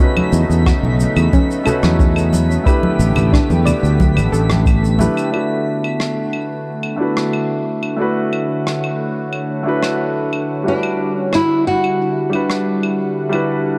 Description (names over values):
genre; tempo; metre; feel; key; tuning
sunset chillout; 90 BPM; 4/4; straight; unclear; A4 = 439 Hz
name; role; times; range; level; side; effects
warm grand piano; accompaniment; 0.0-13.8 s; G3 to B4; -23 LUFS; equal; delay
lush unison pad; sustained chords; 0.0-13.8 s; C#3 to F#5; -26 LUFS; equal; chorus, vintage 12-bit sampler grit
soft round pluck; arpeggios; 0.0-4.6 s; C#4 to D5; -27 LUFS; equal; chorus, cassette tape, delay
electronic kick drum; drums; 0.0-4.8 s; none; -17 LUFS; equal; overdrive
twinkling granular texture; texture; 0.0-5.3 s; B6; -35 LUFS; equal; built-in reverb
claves, shaker and rim click; drums; 0.2-13.5 s; none; -29 LUFS; equal; none
congas; percussion; 0.2-5.1 s; none; -24 LUFS; equal; none
fingered electric bass; bass; 0.3-5.1 s; A1 to E2; -17 LUFS; equal; none
nylon-string guitar; melody; 10.7-13.8 s; D4 to F#4; -21 LUFS; equal; digital delay
room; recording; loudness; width
light reverb, studio ambience; dark, warm production; -17 LUFS; mono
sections
0.0-5.3 A section; 5.3-13.8 B section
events
filter sweep on analog synth pad 5.3-13.8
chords
0.0 B9; 2.7 A9sus4; 5.3 D6; 10.7 Em9